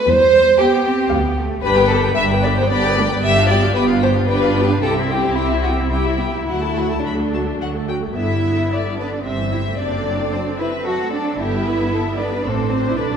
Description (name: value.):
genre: quick classical-period movement for string orchestra.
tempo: 104-118 BPM.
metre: 3/4.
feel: rubato.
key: G major.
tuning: A4 = 440 Hz.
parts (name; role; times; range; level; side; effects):
rich chamber violin section; second line; 0.0-13.2 s; D4 to F#5; -19 LUFS; equal; none.
rich studio cello section; bass; 0.0-13.2 s; G3 to F#4; -24 LUFS; right 3 dB; none.
warm chamber double bass section; bass; 0.1-13.2 s; F#1 to E2; -22 LUFS; equal; none.
rich chamber violin section; melody; 0.6-13.0 s; G4 to B5; -26 LUFS; left 5 dB; none.
rich chamber viola section; accompaniment; 0.6-13.2 s; C3 to B4; -23 LUFS; equal; none.
room: wet scoring stage reverb, RT60 1.8 s.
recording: minimal, uncompressed stereo recording.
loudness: -15 LUFS.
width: side -7 dB against mid.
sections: 0.0-8.1 A section; 8.1-13.2 B section.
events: none.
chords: 0.1 C/E; 1.1 G7/D; 1.6 G; 3.2 G7; 4.8 C; 6.4 D; 8.1 G; 9.2 Am7/G; 9.8 D7/F#; 11.4 G; 12.5 D7/A.